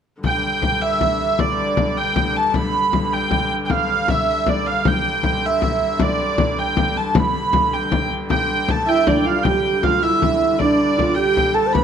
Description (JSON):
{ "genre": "medieval dance", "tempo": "104 BPM (dotted quarters)", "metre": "6/8", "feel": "straight", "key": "G mixolydian", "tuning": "A4 = 439 Hz", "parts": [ { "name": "warm hurdy-gurdy", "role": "melody", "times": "0.2-11.8 s", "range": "D5 to B5", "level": "-19 LUFS", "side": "right 3 dB", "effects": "none" }, { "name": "warm hurdy-gurdy", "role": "drone", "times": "0.2-11.8 s", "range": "G2 to D3", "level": "-26 LUFS", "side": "left 2 dB", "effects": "none" }, { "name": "frame drum", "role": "percussion", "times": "0.2-11.8 s", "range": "none", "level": "-22 LUFS", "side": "left 4 dB", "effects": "none" }, { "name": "breathy mellow shakuhachi", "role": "second line", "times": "8.9-11.8 s", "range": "D4 to C5", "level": "-19 LUFS", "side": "right 3 dB", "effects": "slapback echo" } ], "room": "moderate recital hall reverb, RT60 1.6 s", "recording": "close, detailed microphones", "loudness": "-16 LUFS", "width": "side -8 dB against mid", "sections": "0.2-9.5 A section; 9.5-11.8 A section", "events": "none", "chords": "none" }